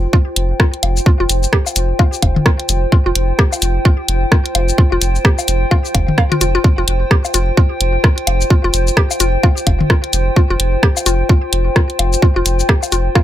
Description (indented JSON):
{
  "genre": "minimal techno",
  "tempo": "129 BPM",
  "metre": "4/4",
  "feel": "swing 60% on 16ths",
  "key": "unclear",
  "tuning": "A4 = 441 Hz",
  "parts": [
    { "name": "saturated sub bass", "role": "bass", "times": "0.0-13.1 s", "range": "F1", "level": "-17 LUFS", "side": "equal", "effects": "sidechain pumping" },
    { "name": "warbly tape-like pad", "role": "texture", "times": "0.0-13.2 s", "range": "F4 to G5", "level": "-21 LUFS", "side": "left 1 dB", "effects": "chorus, built-in reverb, sidechain pumping" },
    { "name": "mallet-like synth pluck", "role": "riff", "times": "0.1-13.2 s", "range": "F4 to F5", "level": "-21 LUFS", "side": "equal", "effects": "chorus, cassette tape, sidechain pumping, tape echo" },
    { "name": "electronic kick drum", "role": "drums", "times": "0.1-13.2 s", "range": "none", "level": "-12 LUFS", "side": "equal", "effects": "none" },
    { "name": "garage drum kit", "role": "drums", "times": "0.4-13.2 s", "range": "hi-hat, rim click, shaker", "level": "-17 LUFS", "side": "equal", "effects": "none" },
    { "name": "electronic woodblock and toms", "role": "percussion", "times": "0.8-13.2 s", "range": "none", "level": "-22 LUFS", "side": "left 4 dB", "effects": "ping-pong delay" }
  ],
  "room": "little or no reverb",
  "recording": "none",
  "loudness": "-12 LUFS",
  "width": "side -12 dB against mid",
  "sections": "0.0-13.2 A section",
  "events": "none",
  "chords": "0.0 F5"
}